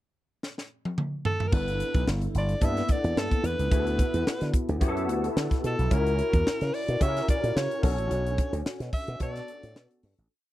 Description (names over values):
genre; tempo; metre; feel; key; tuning
polished 1980s jazz-funk pop; 109 BPM; 4/4; swing 54% on 16ths; unclear; A4 = 440 Hz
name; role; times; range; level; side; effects
crisp fusion drum kit; drums; 0.4-10.3 s; crash cymbal, hi-hat, kick drum, snare drum, toms; -27 LUFS; equal; none
breathy alto saxophone; melody; 1.3-10.0 s; A4 to E5; -30 LUFS; equal; slapback echo
barky tine electric piano; accompaniment; 1.5-10.3 s; Bb3 to A#4; -32 LUFS; left 2 dB; ensemble chorus
slap bass with an envelope filter; bass; 1.5-10.3 s; G1 to D3; -28 LUFS; equal; none
room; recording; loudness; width
little or no reverb; dry, close 1970s-style studio recording; -24 LUFS; side -15 dB against mid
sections
0.0-1.5 pickup bar; 1.5-10.3 verse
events
drum fill 0.4-1.5; fade-out 8.1-10.3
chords
0.0 N.C.; 1.5 G69; 3.7 D69; 5.9 F#7/C#; 7.8 Bm9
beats
0.43 0.98 | 1.52 2.07 2.62 3.17 | 3.72 4.27 4.81 5.36 | 5.91 6.46 7.01 7.55 | 8.10 8.65 9.20 9.75